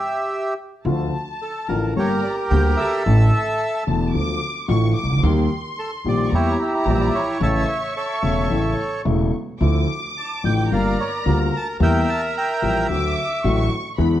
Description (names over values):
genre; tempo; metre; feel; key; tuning
tango; 110 BPM; 4/4; rubato; D harmonic minor; A4 = 440 Hz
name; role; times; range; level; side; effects
bandoneon; melody; 0.0-13.7 s; E4 to Bb5; -23 LUFS; right 1 dB; none
upright bass; bass; 0.8-14.2 s; E1 to E2; -21 LUFS; right 1 dB; none
warm studio violin section; second line; 0.9-14.2 s; A5 to D6; -30 LUFS; left 1 dB; none
dark concert grand piano; accompaniment; 0.9-14.2 s; E1 to G4; -22 LUFS; left 3 dB; none
room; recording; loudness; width
moderate large studio reverb, RT60 1.1 s; worn, warbling old tape, cassette tape, warbly pitch drift; -18 LUFS; side -12 dB against mid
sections
0.9-14.2 A section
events
stop 0.0-0.9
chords
0.0 N.C.; 0.9 Dm; 2.0 Gm; 3.1 Asus4; 4.1 Dm; 5.2 Eb; 6.3 Edim; 7.4 A; 9.6 Dmadd9; 10.7 Gm7; 11.8 Edim; 12.9 D